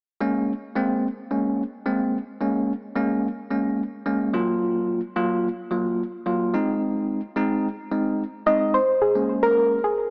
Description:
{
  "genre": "pop",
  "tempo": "109 BPM",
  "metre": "4/4",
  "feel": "straight",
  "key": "Bb minor",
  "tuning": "A4 = 439 Hz",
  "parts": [
    { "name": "bell-like tine electric piano", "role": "accompaniment", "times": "0.2-9.8 s", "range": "Gb3 to F4", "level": "-26 LUFS", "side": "equal", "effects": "none" },
    { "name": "soft round pluck", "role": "melody", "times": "8.5-10.1 s", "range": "Ab4 to Eb5", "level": "-21 LUFS", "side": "equal", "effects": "chorus" }
  ],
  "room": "moderate lush hall reverb, RT60 3.1 s",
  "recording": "dry, gritty hardware recording, transformer saturation, small speaker sound",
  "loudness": "-24 LUFS",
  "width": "mono",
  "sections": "0.2-9.0 A section; 9.0-10.1 B section",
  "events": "none",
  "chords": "0.2 Bbm7; 4.3 Gbmaj7; 6.5 Ab; 9.0 Bbm7"
}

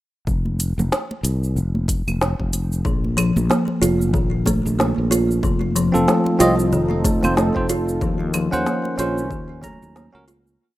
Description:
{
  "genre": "organic downtempo",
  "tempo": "93 BPM",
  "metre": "4/4",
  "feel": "swing 59% on 16ths",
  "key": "F phrygian dominant",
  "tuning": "A4 = 439 Hz",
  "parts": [
    { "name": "sustaining fretless electric bass", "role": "bass", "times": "0.3-10.6 s", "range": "F1 to Eb2", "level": "-22 LUFS", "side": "left 1 dB", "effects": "sidechain pumping" },
    { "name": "electronic kick drum", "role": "drums", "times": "0.3-9.8 s", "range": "none", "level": "-25 LUFS", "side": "left 1 dB", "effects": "overdrive, small room ambience" },
    { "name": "organic electronic drum kit", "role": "drums", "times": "0.3-10.6 s", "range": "cabasa, claves, hi-hat, snare drum", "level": "-24 LUFS", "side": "equal", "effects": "overdrive, small room ambience" },
    { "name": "congas", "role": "percussion", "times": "0.5-10.4 s", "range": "none", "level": "-29 LUFS", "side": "right 1 dB", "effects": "none" },
    { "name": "kalimba", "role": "arpeggios", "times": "2.8-10.6 s", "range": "Eb3 to F4", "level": "-21 LUFS", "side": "equal", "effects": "digital delay" },
    { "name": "warm analog pad", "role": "sustained chords", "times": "5.4-10.6 s", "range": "Eb3 to A4", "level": "-27 LUFS", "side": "equal", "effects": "chorus, sidechain pumping" },
    { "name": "bell-like tine electric piano", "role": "accompaniment", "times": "5.9-10.2 s", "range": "Gb3 to Bb5", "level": "-22 LUFS", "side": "right 1 dB", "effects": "sidechain pumping, digital delay" }
  ],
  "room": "light reverb",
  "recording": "rough home demo mix",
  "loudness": "-17 LUFS",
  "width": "side -16 dB against mid",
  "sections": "0.3-10.6 groove",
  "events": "fade-out 7.2-10.6",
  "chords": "0.3 F5; 2.9 Bb5; 5.4 F7; 8.0 Ebm7"
}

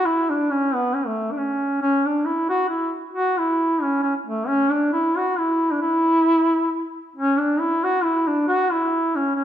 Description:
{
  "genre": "celtic folk",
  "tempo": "136 BPM",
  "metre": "3/4",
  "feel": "swing 53% on 8ths",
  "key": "unclear",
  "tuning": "A4 = 439 Hz",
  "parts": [
    { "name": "warm duduk", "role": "solo", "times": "0.0-9.4 s", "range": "A3 to F#4", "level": "-19 LUFS", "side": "equal", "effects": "none" }
  ],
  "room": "wet recital hall reverb, RT60 1.3 s",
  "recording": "dark, warm production",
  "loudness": "-19 LUFS",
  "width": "side -10 dB against mid",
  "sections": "0.0-7.1 A section; 7.1-9.4 A section",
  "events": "none",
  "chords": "none"
}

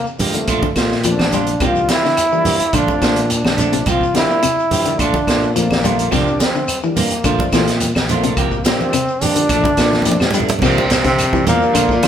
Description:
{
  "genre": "afrobeat",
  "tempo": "106 BPM",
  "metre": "4/4",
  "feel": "straight",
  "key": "C mixolydian",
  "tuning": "A4 = 440 Hz",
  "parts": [
    { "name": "clear trombone", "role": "melody", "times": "0.0-12.1 s", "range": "A3 to F4", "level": "-18 LUFS", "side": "equal", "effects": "none" },
    { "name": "electric guitar at the edge of break-up", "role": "arpeggios", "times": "0.0-12.1 s", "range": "Bb2 to G3", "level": "-23 LUFS", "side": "left 5 dB", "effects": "none" },
    { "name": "shekere", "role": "percussion", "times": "0.1-12.1 s", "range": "none", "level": "-29 LUFS", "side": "left 3 dB", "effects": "none" },
    { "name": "semi-hollow electric guitar", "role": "stabs", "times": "0.2-12.1 s", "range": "F3 to G4", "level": "-23 LUFS", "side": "right 5 dB", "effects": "none" },
    { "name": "modern bright fingered electric bass", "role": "bass", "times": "0.2-12.1 s", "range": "Bb1 to C3", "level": "-22 LUFS", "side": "equal", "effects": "none" },
    { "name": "vintage drum kit", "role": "drums", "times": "0.2-12.1 s", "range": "crash cymbal, hi-hat, kick drum, snare drum", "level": "-20 LUFS", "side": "equal", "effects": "none" },
    { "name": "congas", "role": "percussion", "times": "0.2-12.1 s", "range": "none", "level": "-24 LUFS", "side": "right 2 dB", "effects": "none" },
    { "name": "tonewheel organ", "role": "accompaniment", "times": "0.3-11.8 s", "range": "F3 to D4", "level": "-26 LUFS", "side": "left 2 dB", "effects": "chorus vibrato, slow rotary speaker" },
    { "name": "claves", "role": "percussion", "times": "0.5-12.1 s", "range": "none", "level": "-30 LUFS", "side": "left 1 dB", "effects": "none" },
    { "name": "edgy tenor saxophone", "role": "second line", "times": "10.6-12.1 s", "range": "Bb2 to C3", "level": "-21 LUFS", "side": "right 3 dB", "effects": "none" }
  ],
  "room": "moderate large studio reverb, RT60 1.1 s",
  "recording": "band playing live in one room",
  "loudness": "-13 LUFS",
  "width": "side -9 dB against mid",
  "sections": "0.0-10.6 A section; 10.6-12.1 B section",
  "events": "drum fill 9.9-10.6",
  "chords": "0.5 Bbmaj7; 1.6 C7sus4; 2.7 Bbmaj7; 3.9 C7sus4; 5.0 Bbmaj7; 6.1 C7sus4; 7.2 Bbmaj7; 8.4 C7sus4; 9.5 Bbmaj7; 10.6 C7sus4"
}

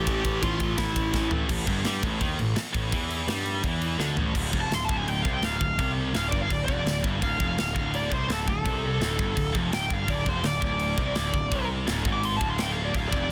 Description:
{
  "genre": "heavy metal",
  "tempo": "168 BPM",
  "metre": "4/4",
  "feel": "straight",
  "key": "D minor from 4.4 s",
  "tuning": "A4 = 436 Hz",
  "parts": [
    { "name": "high-gain lead guitar", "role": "melody", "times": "0.0-1.3, 4.6-13.3 s", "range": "E4 to D6", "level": "-32 LUFS", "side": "equal", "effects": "distortion, delay" },
    { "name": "scooped high-gain guitar", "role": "riff", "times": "0.0-13.3 s", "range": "D2 to A3", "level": "-35 LUFS", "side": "equal", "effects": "distortion" },
    { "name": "scooped high-gain guitar", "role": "riff", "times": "0.0-13.3 s", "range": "D2 to A3", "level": "-36 LUFS", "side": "equal", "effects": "distortion" },
    { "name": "fuzz picked electric bass", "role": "bass", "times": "0.0-13.3 s", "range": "D1 to G2", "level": "-33 LUFS", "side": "equal", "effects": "overdrive" },
    { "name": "tight metal drum kit", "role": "drums", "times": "0.1-13.2 s", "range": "crash cymbal, kick drum, ride cymbal, snare drum, toms", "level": "-32 LUFS", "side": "equal", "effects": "none" }
  ],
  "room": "little or no reverb",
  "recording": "dense, heavily limited modern master",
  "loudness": "-27 LUFS",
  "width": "mono",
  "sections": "0.0-1.5 A section; 1.5-4.4 B section; 4.4-13.3 C section",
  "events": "half time 0.0-1.5; drum fill 1.1-1.5, 4.0-4.4; lead electric guitar solo 4.4-13.3",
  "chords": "0.0 A5; 4.4 Dm"
}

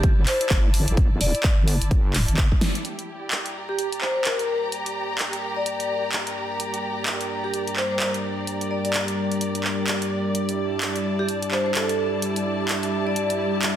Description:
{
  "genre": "bass house",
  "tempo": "128 BPM",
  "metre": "4/4",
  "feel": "swing 59% on 16ths",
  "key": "G dorian",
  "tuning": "A4 = 440 Hz",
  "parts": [
    { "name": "vibraphone with medium hard mallets", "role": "melody", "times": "0.0-13.5 s", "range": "G4 to D5", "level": "-27 LUFS", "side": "equal", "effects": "digital delay" },
    { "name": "wobble bass", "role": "bass", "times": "0.0-2.5 s", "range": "G1", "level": "-23 LUFS", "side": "equal", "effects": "chorus, tube saturation, sidechain pumping" },
    { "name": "big-room dance drum kit", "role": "drums", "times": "0.0-13.7 s", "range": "handclaps, hi-hat, snare drum", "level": "-27 LUFS", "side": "equal", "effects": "none" },
    { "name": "electronic kick drum", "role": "drums", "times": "0.0-2.6 s", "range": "none", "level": "-20 LUFS", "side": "equal", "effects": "none" },
    { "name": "rich studio string section", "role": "texture", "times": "0.0-13.8 s", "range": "G3 to Bb5", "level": "-30 LUFS", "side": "equal", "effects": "sidechain pumping" },
    { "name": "dark analog pad", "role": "sustained chords", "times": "2.8-13.8 s", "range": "G3 to E5", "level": "-27 LUFS", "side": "equal", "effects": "chorus, sidechain pumping" }
  ],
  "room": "light reverb, digital ambience",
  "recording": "dense, heavily limited modern master",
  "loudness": "-21 LUFS",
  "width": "side -11 dB against mid",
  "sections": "0.0-2.8 A section; 2.8-13.8 B section",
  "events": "drum fill 2.6; band accent 2.6",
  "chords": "0.0 Dsus2/G; 2.8 Gm; 10.3 Dsus2/G"
}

